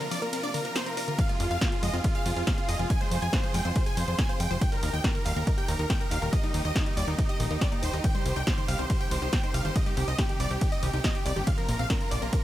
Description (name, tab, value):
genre	uplifting trance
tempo	140 BPM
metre	4/4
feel	straight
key	F dorian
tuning	A4 = 438 Hz
part	big supersaw lead	melody	0.0-12.4 s	Eb4 to Ab5	-33 LUFS	right 1 dB	sidechain pumping, tape echo
part	analog pluck	second line	0.0-12.4 s	Eb4 to Ab5	-39 LUFS	equal	chorus, sidechain pumping, dub echo
part	warm symphonic string section	sustained chords	0.0-12.4 s	Bb2 to Ab4	-37 LUFS	right 1 dB	sidechain pumping
part	wide unison pluck	arpeggios	0.0-12.4 s	D3 to Ab4	-38 LUFS	left 3 dB	sidechain pumping
part	punchy analog drum machine	drums	0.0-12.4 s	hi-hat, ride cymbal, snare drum	-35 LUFS	equal	none
part	electronic kick drum	drums	1.2-12.4 s	none	-28 LUFS	equal	none
part	plucky analog bass	bass	1.4-12.3 s	Eb1 to F2	-30 LUFS	equal	sidechain pumping
room	digital ambience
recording	none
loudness	-25 LUFS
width	side -14 dB against mid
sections	0.0-12.4 A section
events	break 0.0-1.2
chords	0.0 Bbadd9; 1.2 Fm; 4.6 Eb; 8.0 Cm; 11.5 Bbadd9